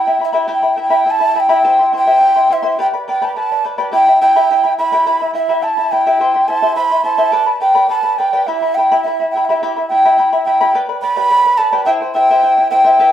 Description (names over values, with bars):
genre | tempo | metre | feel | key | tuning
andean folk, Andean ensemble | 106 BPM | 2/4 | straight | E minor | A4 = 436 Hz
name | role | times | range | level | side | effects
breathy large quena | melody | 0.0-13.1 s | E5 to B5 | -12 LUFS | right 1 dB | tape echo
charango | accompaniment | 0.0-13.1 s | E4 to C6 | -18 LUFS | left 3 dB | none
room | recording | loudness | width
wet studio reverb, RT60 0.6 s | heard from further back in the room | -11 LUFS | side -10 dB against mid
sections
0.0-1.6 A section; 1.6-10.7 A section; 10.7-13.1 B section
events
none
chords
0.0 Em; 1.6 C; 2.8 G; 3.9 Em; 6.2 C; 7.3 G; 8.5 Em; 10.7 G; 11.9 C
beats
| 0.50 1.07 | 1.64 2.21 | 2.78 3.35 | 3.91 4.48 | 5.05 5.62 | 6.19 6.76 | 7.33 7.89 | 8.46 9.03 | 9.60 10.16 | 10.73 11.30 | 11.87 12.43 | 13.00